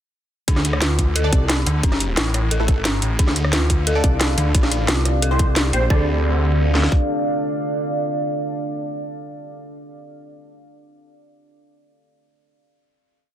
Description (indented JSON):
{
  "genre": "dark technical drum and bass",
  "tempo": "177 BPM",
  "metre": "4/4",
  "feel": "straight",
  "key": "D minor",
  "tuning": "A4 = 441 Hz",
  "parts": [
    { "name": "dark detuned synth bell", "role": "arpeggios", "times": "0.5-6.1 s", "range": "C#4 to A4", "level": "-27 LUFS", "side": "left 3 dB", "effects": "chorus, sidechain pumping, digital delay" },
    { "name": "snarling distorted saw bass", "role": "bass", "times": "0.5-6.9 s", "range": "F#1 to D2", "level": "-20 LUFS", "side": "equal", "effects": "tube saturation, sidechain pumping" },
    { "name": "drum and bass drum kit", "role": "drums", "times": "0.5-7.0 s", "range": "kick drum, snare drum", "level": "-18 LUFS", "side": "equal", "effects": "none" },
    { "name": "drum and bass drum kit", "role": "drums", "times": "0.5-5.8 s", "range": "hi-hat, rim click, snare drum", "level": "-22 LUFS", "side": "equal", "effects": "none" },
    { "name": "filtered dub chord stab", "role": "stabs", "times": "1.2-10.0 s", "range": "A3 to D5", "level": "-27 LUFS", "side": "right 1 dB", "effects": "phaser, ensemble chorus, digital delay" },
    { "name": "metallic wobble bass", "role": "bass", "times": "1.3-1.7, 4.0-5.9 s", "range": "Bb1 to C2", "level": "-20 LUFS", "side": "equal", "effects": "chorus" },
    { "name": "deep dark ambient pad", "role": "sustained chords", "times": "3.8-9.4 s", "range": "D4 to F5", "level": "-25 LUFS", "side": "right 1 dB", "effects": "chorus, built-in reverb, sidechain pumping" }
  ],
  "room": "light reverb",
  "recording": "dense, heavily limited modern master",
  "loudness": "-17 LUFS",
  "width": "side -11 dB against mid",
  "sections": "0.5-5.9 drop; 5.9-8.6 final chord",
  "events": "drop 0.5-5.9",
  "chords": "0.5 D5; 1.8 A5; 3.2 Dm; 4.5 C5; 5.9 Dm",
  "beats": "| 0.48 0.82 1.16 1.50 | 1.83 2.17 2.51 2.85 | 3.19 3.53 3.87 4.21 | 4.55 4.89 5.22 5.56 | 5.90 6.24 6.58 6.92 | 7.26 7.60 7.94 8.28"
}